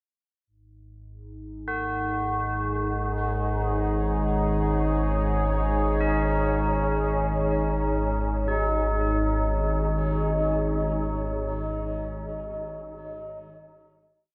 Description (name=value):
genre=dark ambient drone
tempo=free time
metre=none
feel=none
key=unclear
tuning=A4 = 440 Hz
part: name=deep dark ambient pad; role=sustained chords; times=1.4-12.2 s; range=D#4 to C#5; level=-31 LUFS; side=equal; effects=chorus, built-in reverb
part: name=deep rumbling drone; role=drone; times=1.2-11.9 s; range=G#1 to G#2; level=-30 LUFS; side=equal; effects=built-in reverb
part: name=tubular bells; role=arpeggios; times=1.7-14.3 s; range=D#4 to A#4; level=-33 LUFS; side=equal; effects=tape echo
room=wet huge ambient reverb, RT60 8.1 s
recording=none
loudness=-26 LUFS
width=mono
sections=0.5-8.5 A section; 8.5-12.5 final chord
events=none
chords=0.5 G#5